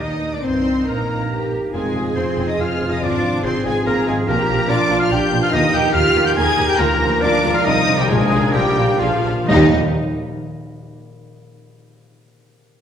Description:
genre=classical, dramatic, fast romantic movement for symphony orchestra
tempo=118-146 BPM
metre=3/4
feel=rubato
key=Eb major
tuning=A4 = 440 Hz
part: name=dark symphonic violin section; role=melody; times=0.0-9.8 s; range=Eb5 to Ab6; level=-24 LUFS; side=left 3 dB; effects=none
part: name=hollow flute section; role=second line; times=0.0-9.8 s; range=F4 to Ab5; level=-27 LUFS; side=equal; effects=none
part: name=warm clarinet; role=second line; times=0.0-9.7 s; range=F4 to Ab5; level=-24 LUFS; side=equal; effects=none
part: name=warm symphonic violin section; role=second line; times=0.0-9.8 s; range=Bb3 to Eb5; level=-28 LUFS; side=left 1 dB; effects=none
part: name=rich symphonic viola section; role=accompaniment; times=0.0-9.7 s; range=F3 to Ab4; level=-24 LUFS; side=right 1 dB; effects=none
part: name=mellow French horn section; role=sustained chords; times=0.0-9.7 s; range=F3 to G4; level=-23 LUFS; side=left 1 dB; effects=none
part: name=concert harp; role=arpeggios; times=0.0-10.9 s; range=F2 to D6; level=-25 LUFS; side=left 2 dB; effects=none
part: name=rich symphonic cello section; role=bass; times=0.0-9.8 s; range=Eb2 to Bb4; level=-24 LUFS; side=right 3 dB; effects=none
part: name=warm symphonic double bass section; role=bass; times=0.0-9.8 s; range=F1 to Eb2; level=-24 LUFS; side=right 2 dB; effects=none
part: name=timpani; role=percussion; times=8.1-9.7 s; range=Bb2 to Eb3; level=-26 LUFS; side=right 1 dB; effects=none
room=wet recital hall reverb, RT60 1.7 s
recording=recorded in a church or concert hall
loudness=-15 LUFS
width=side -8 dB against mid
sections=0.0-9.5 A section; 9.5-10.9 B section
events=none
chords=0.4 Eb; 1.7 Fm; 3.0 Fm/Ab; 4.3 Bb; 5.5 Eb; 6.8 Bb/D; 7.7 Cm; 8.1 Bb7; 9.5 Eb

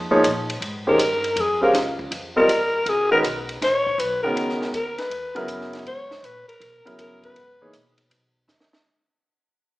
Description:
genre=modal jazz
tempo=160 BPM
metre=4/4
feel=swing 66% on 8ths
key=unclear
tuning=A4 = 440 Hz
part: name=upright bass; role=bass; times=0.0-8.8 s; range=Bb1 to Cb3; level=-37 LUFS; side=equal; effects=none
part: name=warm concert grand piano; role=accompaniment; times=0.1-7.7 s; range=Db3 to F5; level=-22 LUFS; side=equal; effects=none
part: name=compact cocktail drum kit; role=drums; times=0.1-8.8 s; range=hi-hat, kick drum, ride cymbal, snare drum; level=-32 LUFS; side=equal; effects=none
part: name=growling alto saxophone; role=second line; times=0.9-7.7 s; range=Ab4 to Db5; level=-22 LUFS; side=left 1 dB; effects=none
room=moderate recital hall reverb, RT60 1.3 s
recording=recorded in a church or concert hall, small speaker sound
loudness=-19 LUFS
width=side -19 dB against mid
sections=0.0-8.9 A section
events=fade-out 0.0-8.9; alto saxophone solo 0.0-8.9; drum fill 8.5-8.9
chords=0.0 Bbm7; 2.9 Dbm9

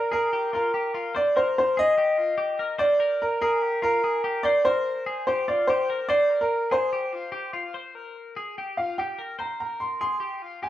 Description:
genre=indie pop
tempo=146 BPM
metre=4/4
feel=straight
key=C minor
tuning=A4 = 438 Hz
part: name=bright upright piano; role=melody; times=0.0-10.7 s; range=Bb4 to C6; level=-22 LUFS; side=equal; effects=none
part: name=twelve-string electric guitar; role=arpeggios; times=0.0-10.7 s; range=F4 to C5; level=-32 LUFS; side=left 3 dB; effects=spring reverb
room=wet studio reverb, RT60 0.6 s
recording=rough home demo mix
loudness=-22 LUFS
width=side -13 dB against mid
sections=0.0-7.7 A section; 7.7-9.4 B section; 9.4-10.7 C section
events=none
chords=0.0 Bb5; 6.1 Abadd9; 6.9 C5

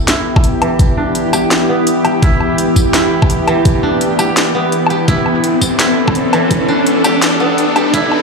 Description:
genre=half-time drum and bass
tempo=168 BPM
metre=4/4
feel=swing 58% on 16ths, half-time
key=E minor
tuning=A4 = 441 Hz
part: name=bowed-like drone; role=sustained chords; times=0.0-8.2 s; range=E3 to A4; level=-14 LUFS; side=left 1 dB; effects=built-in reverb, vintage 12-bit sampler grit, sidechain pumping
part: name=koto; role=arpeggios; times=0.0-8.2 s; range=E3 to G4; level=-18 LUFS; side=right 2 dB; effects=low-pass filter, tape echo
part: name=riser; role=sound effects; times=1.9-8.2 s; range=none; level=-20 LUFS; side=right 1 dB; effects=none
part: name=drum and bass drum kit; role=drums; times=0.1-8.2 s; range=hi-hat, snare drum, tambourine, woodblock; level=-17 LUFS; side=left 1 dB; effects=overdrive, high-pass filter on hats, high-pass filter on snare, high-pass filter on perc, high-pass filter on room
part: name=electronic kick drum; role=drums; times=0.4-8.0 s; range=none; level=-13 LUFS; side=equal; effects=overdrive
room=moderate digital room reverb, RT60 1.1 s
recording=played on a big sound system in a bare room, large studio reverb, high-pass filter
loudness=-10 LUFS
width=side -4 dB against mid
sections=0.0-8.2 A section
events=build-up 0.0-8.2; filter sweep on koto 0.0-8.2; riser 1.9-8.2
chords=0.0 Em

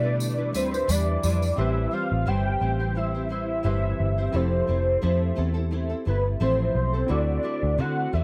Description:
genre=indie pop, bedroom pop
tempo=87 BPM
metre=4/4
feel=swing 55% on 16ths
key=A minor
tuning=A4 = 440 Hz
part: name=soft octave-layered synth lead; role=melody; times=0.0-8.2 s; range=B4 to G5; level=-30 LUFS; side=equal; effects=phaser, ensemble chorus, digital delay
part: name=nylon-string guitar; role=accompaniment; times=0.0-8.2 s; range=A2 to C5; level=-34 LUFS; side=equal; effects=analog chorus, vibrato effect
part: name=warm analog keys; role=accompaniment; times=0.0-8.2 s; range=E3 to D5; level=-36 LUFS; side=equal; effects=chorus, cassette tape
part: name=string machine, cellos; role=sustained chords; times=0.0-1.5 s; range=D3 to E4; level=-41 LUFS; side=equal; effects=ensemble chorus
part: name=vintage muted picked electric bass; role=bass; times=0.0-8.2 s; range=F1 to D3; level=-27 LUFS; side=equal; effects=none
part: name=tambourine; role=percussion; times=0.2-1.6 s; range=none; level=-38 LUFS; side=equal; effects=none
room=light reverb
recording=none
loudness=-25 LUFS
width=mono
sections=0.0-1.6 A section; 1.6-8.2 B section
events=none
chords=0.0 Em7; 1.6 Am7; 4.3 Fmaj7; 7.1 D7

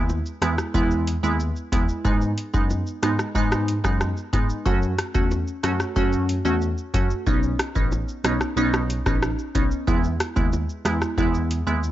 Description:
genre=dancehall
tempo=92 BPM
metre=4/4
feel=straight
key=unclear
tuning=A4 = 439 Hz
part: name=glassy wavetable pluck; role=accompaniment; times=0.0-11.8 s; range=G#3 to F#4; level=-25 LUFS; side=right 2 dB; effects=chorus
part: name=bell-like tine electric piano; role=bass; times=0.0-11.9 s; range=A1 to G#2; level=-26 LUFS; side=equal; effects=medium stereo tremolo
part: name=booming analog drum machine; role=drums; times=0.1-11.9 s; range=hi-hat, kick drum, rim click, shaker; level=-24 LUFS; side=equal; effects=none
part: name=bongos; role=percussion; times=0.1-11.0 s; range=none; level=-35 LUFS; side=right 1 dB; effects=none
room=digital ambience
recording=dry, gritty hardware recording, nothing above 7.6 kHz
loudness=-20 LUFS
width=side -13 dB against mid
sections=0.0-11.9 A section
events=none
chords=0.0 E; 2.1 G#m; 4.7 F#m; 7.3 Badd9; 9.9 E

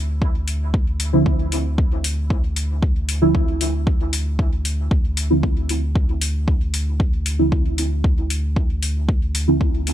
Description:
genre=dub techno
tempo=115 BPM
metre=4/4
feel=straight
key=D minor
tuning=A4 = 440 Hz
part: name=warm sub bass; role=bass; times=0.0-9.9 s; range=D2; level=-22 LUFS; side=equal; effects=sidechain pumping
part: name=electronic kick drum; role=drums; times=0.2-9.7 s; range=none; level=-19 LUFS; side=equal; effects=none
part: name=electronic hi-hat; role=drums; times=0.5-9.9 s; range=none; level=-26 LUFS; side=left 4 dB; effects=none
part: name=deep mellow chord stab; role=stabs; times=1.1-9.8 s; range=D3 to E4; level=-21 LUFS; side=right 2 dB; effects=chorus, phaser, sidechain pumping, dub echo
room=little or no reverb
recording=bright 1980s-style digital production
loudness=-18 LUFS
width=side -11 dB against mid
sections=0.0-9.9 A section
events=filter sweep on synth stab 0.0-9.9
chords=0.0 Dm9

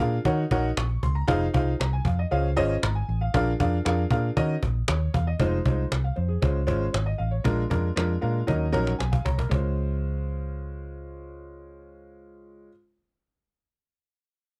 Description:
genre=uptempo 1960s-style soul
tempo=117 BPM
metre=4/4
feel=straight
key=Db major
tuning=A4 = 440 Hz
part: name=clear upright piano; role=accompaniment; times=0.0-12.7 s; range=Gb3 to Db6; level=-31 LUFS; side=equal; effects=none
part: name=vintage muted fingered electric bass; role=bass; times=0.0-12.7 s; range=F1 to Eb3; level=-28 LUFS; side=equal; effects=none
part: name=cajon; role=drums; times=0.3-9.6 s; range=none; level=-30 LUFS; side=equal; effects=none
room=light reverb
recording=dark, warm production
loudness=-25 LUFS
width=mono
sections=0.0-5.4 A section; 5.4-9.5 B section; 9.5-13.6 C section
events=upright piano fill 8.0-9.5; drum fill 8.5-9.5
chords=0.3 Ebm7; 1.3 Fm7; 2.3 Dbmaj7; 3.3 Bb7; 4.4 Ebm7; 5.4 Fm7; 6.4 Dbmaj7; 7.5 Bb7; 8.5 Ebm7; 9.5 Dbmaj7

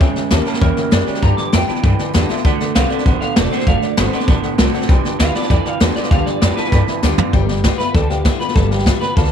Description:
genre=rockabilly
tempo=197 BPM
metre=4/4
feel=straight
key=G mixolydian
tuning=A4 = 441 Hz
part: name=honky-tonk upright piano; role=accompaniment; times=0.0-9.3 s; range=A4 to A5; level=-27 LUFS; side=left 14 dB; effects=none
part: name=picked steel-string acoustic guitar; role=accompaniment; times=0.0-9.3 s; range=A2 to G4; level=-24 LUFS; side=left 16 dB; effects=none
part: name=electric guitar through a small old amp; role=riff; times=0.0-7.3 s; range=G2 to B3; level=-22 LUFS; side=right 17 dB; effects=none
part: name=upright bass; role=bass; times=0.0-9.3 s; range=E1 to G2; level=-18 LUFS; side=equal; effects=none
part: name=jazz brush drum kit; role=drums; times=0.0-9.3 s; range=hi-hat, kick drum, snare drum, toms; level=-16 LUFS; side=equal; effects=none
part: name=electric guitar through a small old amp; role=melody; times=0.6-9.3 s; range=E4 to D6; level=-23 LUFS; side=right 2 dB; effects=ensemble chorus, tape echo
room=studio ambience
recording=1960s-style stereo with parts hard left and right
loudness=-13 LUFS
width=side -8 dB against mid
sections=0.0-7.3 A section; 7.3-9.3 B section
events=clean electric guitar solo 0.0-7.3; drum fill 7.0-7.3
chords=0.0 C#dim7; 1.2 G7; 2.5 D7; 4.9 G7

